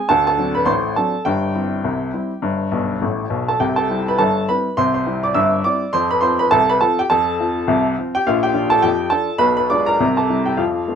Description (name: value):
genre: ragtime piano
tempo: 103 BPM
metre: 2/4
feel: swing 59% on 16ths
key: C major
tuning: A4 = 435 Hz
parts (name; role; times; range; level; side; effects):
- clear upright piano; solo; 0.0-11.0 s; G1 to E6; -16 LUFS; equal; none
room: moderate studio reverb, RT60 0.5 s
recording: minimal, uncompressed stereo recording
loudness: -16 LUFS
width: side -7 dB against mid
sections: 0.0-11.0 A section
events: upright piano fill 2.7-3.6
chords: 0.1 D7; 1.3 C/G; 2.4 G; 3.6 C; 5.9 F; 8.3 Bb; 9.4 Bdim7; 10.0 C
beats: | 0.11 0.69 | 1.27 1.86 | 2.45 3.03 | 3.62 4.20 | 4.78 5.36 | 5.95 6.53 | 7.11 7.69 | 8.27 8.85 | 9.43 10.01 | 10.60